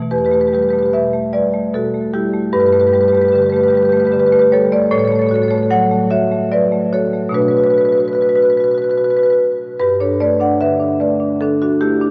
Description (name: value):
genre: classical, contemporary piece for solo marimba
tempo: 75 BPM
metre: 3/4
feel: rubato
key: E dorian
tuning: A4 = 440 Hz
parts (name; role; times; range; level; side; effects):
- marimba with medium hard mallets; solo; 0.0-12.1 s; E2 to F#5; -15 LUFS; equal; none
room: wet cathedral reverb, RT60 4.5 s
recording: worn, warbling old tape, cassette tape, warbly pitch drift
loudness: -15 LUFS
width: mono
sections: 0.1-12.1 A section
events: none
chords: 0.1 Emadd9; 2.5 Gadd9; 4.9 A69; 7.3 Bm7; 9.8 Gadd9